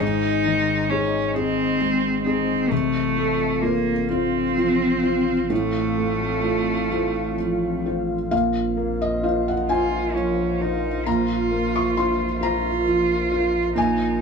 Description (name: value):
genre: neoclassical piano and strings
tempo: 44 BPM (dotted quarters)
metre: 6/8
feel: rubato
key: unclear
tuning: A4 = 440 Hz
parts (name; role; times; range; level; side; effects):
- rich cello; second line; 0.0-14.2 s; A3 to F4; -24 LUFS; right 2 dB; none
- felt-muted upright piano; accompaniment; 0.0-14.2 s; Ab2 to Db6; -22 LUFS; equal; none
- warbly tape-like pad; sustained chords; 0.0-14.2 s; C4 to Gb5; -32 LUFS; left 4 dB; chorus, built-in reverb
- saturated sub bass; bass; 0.0-14.2 s; Ab1 to Bb1; -32 LUFS; left 2 dB; none
room: light reverb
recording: none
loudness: -20 LUFS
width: side -5 dB against mid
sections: 0.0-8.3 A section; 8.3-14.2 B section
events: none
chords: 0.0 Ab; 2.7 F/A; 8.3 Bbsus2